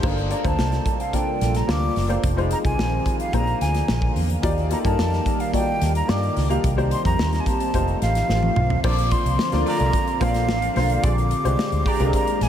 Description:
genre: polished 1980s jazz-funk pop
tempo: 109 BPM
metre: 4/4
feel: straight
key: Bb major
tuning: A4 = 440 Hz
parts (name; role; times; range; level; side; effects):
- clear concert grand piano; accompaniment; 0.0-12.5 s; G3 to F5; -26 LUFS; left 2 dB; analog chorus
- chorused pulse-width pad; sustained chords; 0.4-12.5 s; Bb2 to D5; -29 LUFS; right 1 dB; none
- vintage muted fingered electric bass; bass; 0.0-12.5 s; F1 to G2; -23 LUFS; equal; none
- modern studio drum kit; drums; 0.0-12.5 s; crash cymbal, hi-hat, kick drum, snare drum, toms; -25 LUFS; equal; none
- breathy mellow silver concert flute; melody; 0.3-12.5 s; F5 to D6; -26 LUFS; right 1 dB; analog delay
- mellow horn section; second line; 8.8-12.2 s; Ab3 to D5; -33 LUFS; right 2 dB; none
room: moderate huge ambient reverb, RT60 7.0 s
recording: dreamy mix soaked in reverb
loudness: -19 LUFS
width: side -10 dB against mid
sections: 0.0-8.8 A section; 8.8-12.5 B section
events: drum fill 8.3-8.8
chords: 0.0 Gm11; 2.2 Fm7; 3.3 Bb7; 4.4 Ebmaj7; 6.6 Cm7; 7.7 F7; 8.8 Bbmaj9; 11.0 Bb13

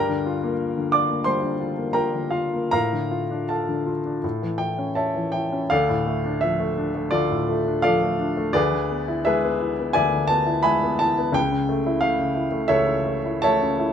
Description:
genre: classical, romantic character piece for solo piano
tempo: 75-92 BPM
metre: 4/4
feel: rubato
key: D minor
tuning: A4 = 440 Hz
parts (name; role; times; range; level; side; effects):
- warm baby grand piano; solo; 0.0-13.9 s; C#2 to D6; -20 LUFS; equal; none
room: light reverb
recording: none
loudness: -20 LUFS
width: side -8 dB against mid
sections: 0.0-5.7 A section; 5.7-13.9 B section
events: none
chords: 0.0 Gm7; 2.7 Dm/A; 4.2 A; 5.7 Dm; 8.6 E7/D; 11.4 A/C#

